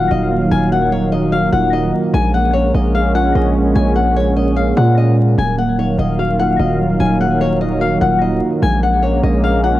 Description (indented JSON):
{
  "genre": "hip hop",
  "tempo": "148 BPM",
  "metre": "4/4",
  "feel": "half-time",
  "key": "Eb minor",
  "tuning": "A4 = 439 Hz",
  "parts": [
    { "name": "flamenco guitar", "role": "melody", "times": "0.0-9.8 s", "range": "Db5 to Ab5", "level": "-19 LUFS", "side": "left 5 dB", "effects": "cassette tape, tape echo" },
    { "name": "mellow tine electric piano", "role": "accompaniment", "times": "0.0-9.8 s", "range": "Gb3 to Ab4", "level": "-21 LUFS", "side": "right 6 dB", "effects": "medium stereo tremolo" },
    { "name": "dark analog pad", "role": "sustained chords", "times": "0.0-9.8 s", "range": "Eb3 to F5", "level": "-18 LUFS", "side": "equal", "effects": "chorus" },
    { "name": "distorted 808-style bass", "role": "bass", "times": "0.0-9.8 s", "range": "Eb1 to Bb2", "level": "-17 LUFS", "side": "equal", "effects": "distortion" }
  ],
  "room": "light reverb",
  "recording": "home recording on cassette, vinyl crackle",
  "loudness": "-12 LUFS",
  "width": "side -14 dB against mid",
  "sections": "0.0-9.8 A section",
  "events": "none",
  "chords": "0.0 Ebmadd9; 2.1 Bbm7; 5.4 Ebmadd9; 8.6 Bbm7"
}